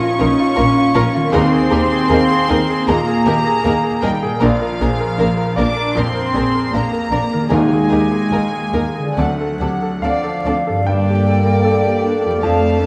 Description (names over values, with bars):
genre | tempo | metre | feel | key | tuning
cinematic, emotional film score for orchestra | 68-80 BPM | 4/4 | rubato | unclear | A4 = 440 Hz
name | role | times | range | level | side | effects
warm studio violin section | melody | 0.0-12.9 s | D5 to D6 | -26 LUFS | equal | none
bright grand piano | accompaniment | 0.0-12.9 s | Bb1 to A5 | -24 LUFS | equal | none
concert harp | arpeggios | 0.0-12.9 s | F2 to Eb5 | -26 LUFS | equal | none
warm symphonic cello section | bass | 0.0-12.9 s | F3 to D4 | -23 LUFS | equal | none
warm symphonic violin section | second line | 0.2-12.9 s | F4 to F5 | -26 LUFS | equal | none
dark symphonic viola section | accompaniment | 0.2-12.9 s | F3 to Bb4 | -25 LUFS | equal | none
warm symphonic double bass section | bass | 0.2-12.9 s | Bb1 to G2 | -24 LUFS | equal | none
timpani | percussion | 7.5-8.7 s | Eb3 | -23 LUFS | equal | none
bright silver concert flute | second line | 10.0-12.9 s | F5 to A5 | -26 LUFS | equal | none
dark French horn section | sustained chords | 10.9-12.9 s | Bb3 to A4 | -22 LUFS | equal | none
room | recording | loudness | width
moderate scoring stage reverb, RT60 1.8 s | dark, warm production, vinyl crackle | -16 LUFS | mono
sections
0.0-10.9 A section; 10.9-12.9 B section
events
none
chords
0.0 Bbm; 1.3 Ebsus4; 4.4 Bb; 7.5 Ebsus4; 9.2 D7; 10.9 Gmadd9